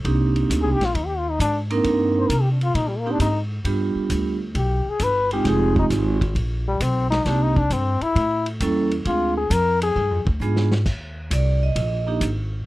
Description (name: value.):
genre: jazz, small-group swing and bop.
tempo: 133 BPM.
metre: 4/4.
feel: swing 68% on 8ths.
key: C minor.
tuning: A4 = 440 Hz.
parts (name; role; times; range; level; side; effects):
vibraphone with medium hard mallets; accompaniment; 0.0-12.2 s; G3 to Eb5; -22 LUFS; right 3 dB; none.
upright bass; bass; 0.0-12.6 s; F1 to C3; -23 LUFS; equal; none.
vintage drum kit; drums; 0.0-12.4 s; crash cymbal, hi-hat, kick drum, ride cymbal, snare drum; -29 LUFS; equal; none.
clear trombone; melody; 0.6-10.2 s; G3 to C5; -22 LUFS; left 3 dB; none.
room: little or no reverb.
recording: dry, close 1970s-style studio recording.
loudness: -19 LUFS.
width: side -17 dB against mid.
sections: 0.0-10.9 A section; 10.9-12.7 A section.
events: trombone solo 0.0-10.9; drum fill 10.4-10.9.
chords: 0.0 Cm7; 3.7 G7; 5.5 Fm7; 7.3 Cm7; 8.2 A7b9; 9.1 Dm7b5; 10.0 G7b9; 10.9 Cm7.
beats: | 0.05 0.50 0.95 1.40 | 1.85 2.30 2.75 3.20 | 3.65 4.10 4.55 5.00 | 5.46 5.91 6.36 6.81 | 7.26 7.71 8.16 8.61 | 9.06 9.51 9.96 10.41 | 10.86 11.31 11.76 12.21.